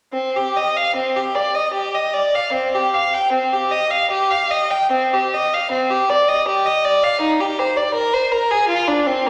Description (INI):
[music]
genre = classical, baroque-style suite movement for unaccompanied violin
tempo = 77 BPM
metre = 3/4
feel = uneven beats, rubato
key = C minor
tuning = A4 = 440 Hz
[part]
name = clear violin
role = solo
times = 0.1-9.3 s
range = Bb3 to G5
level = -18 LUFS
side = equal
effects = none
[sound]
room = wet concert hall reverb, RT60 2.2 s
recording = none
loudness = -18 LUFS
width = mono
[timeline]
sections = 0.1-9.3 A section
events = none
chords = none